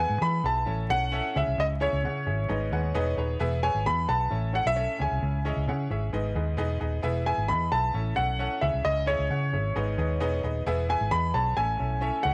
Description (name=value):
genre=uptempo 1960s-style soul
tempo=132 BPM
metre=4/4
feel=straight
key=E major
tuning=A4 = 443 Hz
part: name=warm concert grand piano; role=melody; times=0.0-12.3 s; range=C#5 to B5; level=-30 LUFS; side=equal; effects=none
part: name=clear upright piano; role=accompaniment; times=0.0-12.3 s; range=G#2 to G#5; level=-35 LUFS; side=equal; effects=none
part: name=vintage muted fingered electric bass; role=bass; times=0.0-12.3 s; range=D#1 to E3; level=-31 LUFS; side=equal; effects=none
room=light reverb, small room ambience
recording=vinyl crackle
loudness=-27 LUFS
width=mono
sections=0.0-12.3 A section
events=upright piano fill 2.5-3.4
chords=0.0 E; 0.7 A; 1.4 C#m; 2.5 G#m; 3.4 E; 4.3 A; 5.0 C#m; 6.1 G#m; 7.0 E; 7.9 A; 8.6 C#m; 9.8 G#m; 10.7 E; 11.6 A